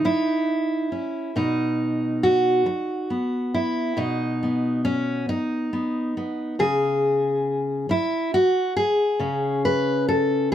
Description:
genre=folk, solo fingerstyle acoustic guitar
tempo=46 BPM (dotted quarters)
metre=6/8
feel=straight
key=unclear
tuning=A4 = 440 Hz
part: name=fingerpicked steel-string acoustic guitar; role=solo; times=0.0-10.5 s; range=B2 to B4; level=-21 LUFS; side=equal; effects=none
room=light reverb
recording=none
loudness=-21 LUFS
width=side -10 dB against mid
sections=0.0-10.5 A section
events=none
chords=0.0 C#madd9; 1.4 B; 4.0 N.C.; 6.6 C#5

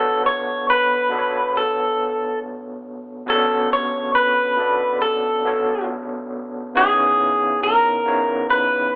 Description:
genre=R&B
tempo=69 BPM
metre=4/4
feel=swing 60% on 16ths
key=B dorian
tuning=A4 = 440 Hz
part: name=electric guitar through a small old amp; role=melody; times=0.0-9.0 s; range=G#4 to C#5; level=-20 LUFS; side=equal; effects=none
part: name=overdriven tine electric piano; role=accompaniment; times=0.0-9.0 s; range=B2 to D5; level=-28 LUFS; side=equal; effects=medium tremolo
room=moderate large studio reverb, RT60 1.2 s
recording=band playing live in one room, telephone sound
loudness=-20 LUFS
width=mono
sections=0.0-9.0 A section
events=none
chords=0.0 Bm9; 6.8 C#m9

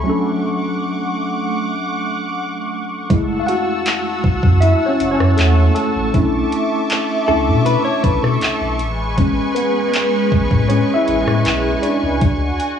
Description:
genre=contemporary R&B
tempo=79 BPM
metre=4/4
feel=straight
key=F# minor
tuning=A4 = 436 Hz
part: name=tine electric piano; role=accompaniment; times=0.0-12.8 s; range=F#3 to F#5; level=-19 LUFS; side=equal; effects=overdrive, fast stereo tremolo
part: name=lush unison pad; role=sustained chords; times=0.0-12.8 s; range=G#3 to E6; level=-21 LUFS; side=right 1 dB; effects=chorus, phaser
part: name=direct-recorded clean electric guitar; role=arpeggios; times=0.0, 7.3-8.8 s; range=A4 to C#5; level=-24 LUFS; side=left 4 dB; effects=tape echo
part: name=saturated sub bass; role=bass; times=0.0-12.5 s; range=F#1 to B2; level=-18 LUFS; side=equal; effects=none
part: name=smooth R&B drum kit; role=drums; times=3.1-12.8 s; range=handclaps, hi-hat, kick drum, rim click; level=-19 LUFS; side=equal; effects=none
room=light reverb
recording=worn, warbling old tape, cassette tape, warbly pitch drift, studio ambience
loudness=-15 LUFS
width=side -8 dB against mid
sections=0.0-3.1 A section; 3.1-12.8 B section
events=break 0.1-3.1; tine electric piano solo 3.1-12.8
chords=0.1 Dmaj7; 3.1 F#m7; 6.1 Bm11; 8.8 Amaj9; 12.2 Dmaj7

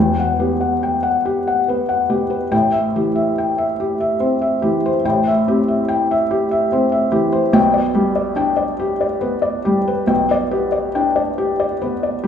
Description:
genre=neoclassical minimalist piano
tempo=47 BPM (dotted quarters)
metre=6/8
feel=rubato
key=unclear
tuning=A4 = 440 Hz
part: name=felt-muted upright piano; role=solo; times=0.0-12.3 s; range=E1 to G5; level=-15 LUFS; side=left 1 dB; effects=none
room=wet recital hall reverb, RT60 1.8 s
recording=recorded in a church or concert hall, studio reverb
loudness=-15 LUFS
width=side -8 dB against mid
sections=0.0-12.3 A section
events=none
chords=0.0 Emadd9; 2.5 Am7; 7.6 G/B

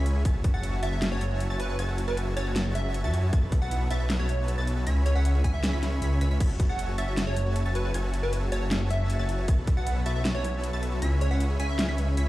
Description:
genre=future bass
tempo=156 BPM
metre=4/4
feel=half-time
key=F# minor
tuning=A4 = 439 Hz
part: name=wide unison pluck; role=arpeggios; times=0.0-12.3 s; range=A6 to B6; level=-42 LUFS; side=equal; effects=sidechain pumping
part: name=wide unison pluck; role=arpeggios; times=0.0-12.2 s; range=E4 to B5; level=-42 LUFS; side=left 1 dB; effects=sidechain pumping, dub echo
part: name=dense compressed supersaw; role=riff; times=0.0-12.3 s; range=B3 to B5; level=-35 LUFS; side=equal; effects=sidechain pumping
part: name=wide detuned saw bass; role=bass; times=0.0-12.3 s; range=F#1 to F#2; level=-26 LUFS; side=equal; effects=chorus, sidechain pumping
part: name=dubstep drum kit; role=drums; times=0.1-12.3 s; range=crash cymbal, hi-hat, snare drum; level=-32 LUFS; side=equal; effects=none
part: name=electronic kick drum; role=drums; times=0.3-0.5, 3.3-6.7, 9.5-9.8 s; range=none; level=-24 LUFS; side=equal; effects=overdrive
part: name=plucky unison lead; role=melody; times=0.5-12.0 s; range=B4 to G#5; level=-35 LUFS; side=right 1 dB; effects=wide subtle chorus, sidechain pumping, dub echo
room=digital ambience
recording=played on a big sound system in a bare room, stone room reverb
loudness=-24 LUFS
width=side -16 dB against mid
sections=0.0-12.3 A section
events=none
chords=0.3 F#m9; 3.3 B7sus4; 4.9 C#m7; 6.4 F#m9; 9.5 B7sus4; 11.0 C#m7

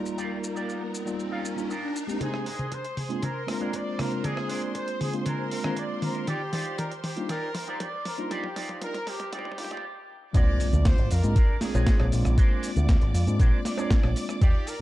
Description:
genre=nu-disco, nu disco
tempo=118 BPM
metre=4/4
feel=straight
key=unclear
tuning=A4 = 441 Hz
part: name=mellow tine electric piano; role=accompaniment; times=0.0-14.4 s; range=G3 to D5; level=-32 LUFS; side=equal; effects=medium stereo tremolo, sidechain pumping, low-pass filter
part: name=rich symphonic string section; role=sustained chords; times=0.0-14.8 s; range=Bb4 to D6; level=-40 LUFS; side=right 1 dB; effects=sidechain pumping
part: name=riser and impact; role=sound effects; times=0.2-2.2, 10.3-12.4 s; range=none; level=-33 LUFS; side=equal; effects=none
part: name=dusty soul sampler-style drum kit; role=drums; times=0.1-14.8 s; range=hi-hat, rim click, shaker, snare drum, toms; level=-33 LUFS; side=equal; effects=overdrive, studio reverb
part: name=electric guitar with an envelope filter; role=riff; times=0.2-14.7 s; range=D4 to F5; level=-38 LUFS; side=right 2 dB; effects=analog chorus, low-pass filter
part: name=clear trumpet section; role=melody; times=2.2-14.8 s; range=G4 to D5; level=-35 LUFS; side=equal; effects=tape echo
part: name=electronic kick drum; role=drums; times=2.2-14.5 s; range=none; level=-22 LUFS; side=equal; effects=high-pass filter on kick, studio reverb
part: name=picked electric bass with an envelope filter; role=bass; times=10.3-14.5 s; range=Ab1 to Ab2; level=-24 LUFS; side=equal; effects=none
part: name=cowbell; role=percussion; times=11.7-14.1 s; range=none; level=-38 LUFS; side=left 4 dB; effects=none
room=light reverb, digital ambience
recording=dark, warm production, high-pass filter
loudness=-24 LUFS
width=side -16 dB against mid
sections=0.0-2.2 A section; 2.2-10.3 B section; 10.3-14.8 C section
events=riser 0.2-2.2; build-up 2.2-10.3; drum fill 2.2-9.8; filter sweep on clean electric guitar 2.2-10.3; filter sweep on tine electric piano 2.2-10.3; drop 10.3-14.8; impact 10.3-12.4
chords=0.0 Ebmaj9; 2.2 Bb9; 6.3 Ebmaj9; 10.3 Bb9

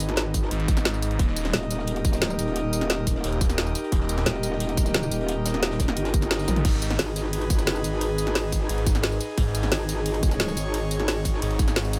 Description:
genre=dark technical drum and bass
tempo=176 BPM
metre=4/4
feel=straight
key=G# harmonic minor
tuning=A4 = 440 Hz
part: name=metallic wobble bass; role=bass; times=0.0-11.4 s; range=D#1 to G#1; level=-30 LUFS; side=equal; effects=chorus, tube saturation
part: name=crunchy breakbeat drum kit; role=drums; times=0.0-12.0 s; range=hi-hat, snare drum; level=-42 LUFS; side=equal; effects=none
part: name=drum and bass drum kit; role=drums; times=0.0-12.0 s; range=crash cymbal, hi-hat, ride cymbal, snare drum, tambourine, toms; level=-30 LUFS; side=equal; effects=none
part: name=airy breathy pad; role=texture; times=0.0-12.0 s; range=D#4 to D#5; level=-32 LUFS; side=equal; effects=chorus, sidechain pumping
part: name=electronic kick drum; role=drums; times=0.3-11.7 s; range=none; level=-25 LUFS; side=equal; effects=none
part: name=phased detuned saw bass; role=bass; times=0.5-4.2, 6.5-12.0 s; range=D#1 to A#1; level=-29 LUFS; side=equal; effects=phaser, overdrive, sidechain pumping
room=light reverb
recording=none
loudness=-25 LUFS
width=mono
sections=0.0-12.0 A section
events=drum fill 6.5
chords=0.0 G#m; 1.2 D#; 6.6 G#m

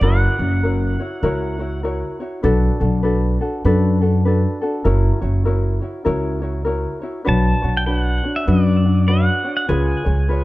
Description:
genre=Hawaiian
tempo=99 BPM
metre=4/4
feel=swing 61% on 8ths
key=B minor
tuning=A4 = 439 Hz
part: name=pedal steel guitar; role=melody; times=0.0-1.8, 7.3-10.4 s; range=D5 to A5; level=-24 LUFS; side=right 1 dB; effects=analog delay
part: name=ukulele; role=accompaniment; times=0.0-10.4 s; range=D4 to C#5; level=-22 LUFS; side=left 1 dB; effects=none
part: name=upright bass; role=bass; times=0.0-10.4 s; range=F#1 to F#2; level=-17 LUFS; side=equal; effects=none
room=light reverb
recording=echo-heavy mix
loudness=-16 LUFS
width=side -18 dB against mid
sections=0.0-10.4 A section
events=none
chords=0.0 F#7; 2.4 Bm7; 4.9 F#7; 7.3 Bmadd9; 9.7 C#7

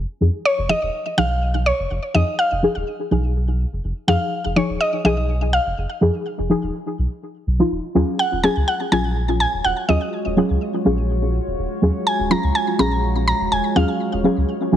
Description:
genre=deep house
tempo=124 BPM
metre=4/4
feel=swing 53% on 16ths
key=Eb minor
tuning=A4 = 440 Hz
part: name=warm sub bass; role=bass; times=0.0-14.8 s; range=Eb1 to F2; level=-21 LUFS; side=equal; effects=none
part: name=deep mellow chord stab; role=stabs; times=0.2-14.8 s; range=F3 to Ab4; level=-21 LUFS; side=equal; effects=chorus, cassette tape, digital delay
part: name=mallet-like synth pluck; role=melody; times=0.5-14.8 s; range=Db5 to Bb5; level=-21 LUFS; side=equal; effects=chorus, digital delay
part: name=deep dark ambient pad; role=sustained chords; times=9.2-14.8 s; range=Ab3 to Db5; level=-26 LUFS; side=equal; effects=chorus, built-in reverb
room=light reverb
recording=heavily compressed radio sound, multiband compression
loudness=-18 LUFS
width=side -10 dB against mid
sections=0.0-14.8 A section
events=filter sweep on synth stab 0.0-14.8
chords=0.0 Fm7b5; 7.7 Ebm11

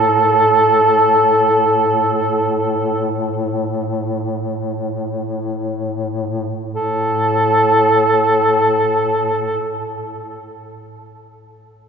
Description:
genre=caucasian folk, Caucasian lament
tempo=free time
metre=none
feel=none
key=unclear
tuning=A4 = 439 Hz
part: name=warm duduk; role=melody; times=0.0-9.8 s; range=A4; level=-14 LUFS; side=right 1 dB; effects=none
part: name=mellow duduk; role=drone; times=0.0-9.8 s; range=A2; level=-22 LUFS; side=left 2 dB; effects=none
room=wet cathedral reverb, RT60 5.0 s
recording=recorded in a church or concert hall, nothing above 7.7 kHz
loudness=-14 LUFS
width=side -6 dB against mid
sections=0.0-6.7 A section; 6.7-11.3 B section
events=slowing down 0.0-6.7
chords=none

